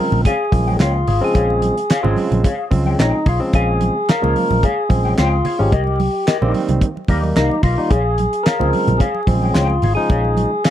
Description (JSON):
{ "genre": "funk", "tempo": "110 BPM", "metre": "4/4", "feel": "straight", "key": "Bb dorian", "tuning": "A4 = 440 Hz", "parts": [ { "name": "percussive tonewheel organ", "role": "melody", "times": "0.0-10.7 s", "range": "Eb4 to Bb4", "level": "-20 LUFS", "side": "left 1 dB", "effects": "overdrive, stopped rotary speaker" }, { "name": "mellow electric guitar", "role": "accompaniment", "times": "0.0-10.7 s", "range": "G4 to G5", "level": "-25 LUFS", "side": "left 6 dB", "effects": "wah" }, { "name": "barky tine electric piano", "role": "stabs", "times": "0.0-10.5 s", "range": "C3 to Eb4", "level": "-22 LUFS", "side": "right 2 dB", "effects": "auto-pan" }, { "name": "vintage muted picked electric bass", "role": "bass", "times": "0.1-10.4 s", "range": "Ab1 to Eb2", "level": "-18 LUFS", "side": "equal", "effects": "none" }, { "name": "congas", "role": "percussion", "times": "0.1-10.5 s", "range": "none", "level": "-25 LUFS", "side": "right 3 dB", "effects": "none" }, { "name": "damped 70s drum kit", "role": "drums", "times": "0.3-10.7 s", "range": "handclaps, hi-hat, kick drum, snare drum", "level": "-16 LUFS", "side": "equal", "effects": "none" } ], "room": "studio ambience", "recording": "dry, close 1970s-style studio recording, vinyl crackle", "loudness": "-14 LUFS", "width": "side -11 dB against mid", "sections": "0.0-10.7 A section", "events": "none", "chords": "0.0 Bbm7; 5.7 Cm7; 7.9 Bbm7" }